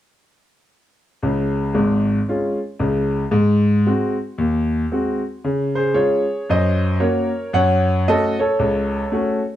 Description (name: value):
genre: jazz, stride piano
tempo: 115 BPM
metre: 4/4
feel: swing 60% on 8ths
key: Db major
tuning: A4 = 439 Hz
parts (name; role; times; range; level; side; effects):
- bright grand piano; solo; 1.2-9.4 s; Ab1 to Gb5; -17 LUFS; equal; none
room: wet club reverb, RT60 0.8 s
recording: dark, warm production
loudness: -17 LUFS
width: side -12 dB against mid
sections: 1.2-5.4 A section; 5.4-9.6 B section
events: none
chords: 1.2 Db; 3.3 Ab7; 5.4 Db; 6.5 Gb; 7.5 Gbm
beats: | 1.24 1.76 2.29 2.81 | 3.33 3.86 4.38 4.91 | 5.43 5.95 6.47 7.00 | 7.52 8.04 8.56 9.09